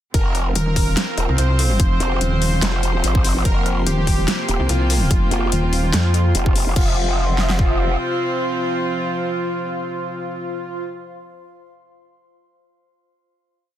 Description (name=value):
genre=heavy wobble dubstep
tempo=145 BPM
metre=4/4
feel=swing 54% on 16ths, half-time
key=unclear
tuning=A4 = 439 Hz
part: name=soft supersaw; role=melody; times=0.1-10.8 s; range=F4 to C5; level=-26 LUFS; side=equal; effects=digital delay
part: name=rich chamber string section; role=sustained chords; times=0.1-10.8 s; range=C3 to C4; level=-28 LUFS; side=right 1 dB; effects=sidechain pumping
part: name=growl bass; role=bass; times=0.1-8.0 s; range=Eb1 to Ab1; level=-20 LUFS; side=equal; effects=chorus, overdrive
part: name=dubstep drum kit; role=drums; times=0.1-7.7 s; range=kick drum, snare drum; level=-18 LUFS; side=equal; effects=none
part: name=dubstep drum kit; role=drums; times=0.1-6.9 s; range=crash cymbal, hi-hat, snare drum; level=-24 LUFS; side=left 2 dB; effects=none
part: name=airy breathy pad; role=texture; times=0.4-10.8 s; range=F4 to C6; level=-29 LUFS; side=left 1 dB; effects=chorus, sidechain pumping
part: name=pulsing pluck wobble bass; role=bass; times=0.6-6.3 s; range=Eb1 to F2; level=-18 LUFS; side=equal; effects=chorus, overdrive
room=little or no reverb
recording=dense, heavily limited modern master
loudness=-17 LUFS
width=side -12 dB against mid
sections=0.1-6.8 drop; 6.8-10.1 final chord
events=drop 0.1-6.8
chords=0.1 F5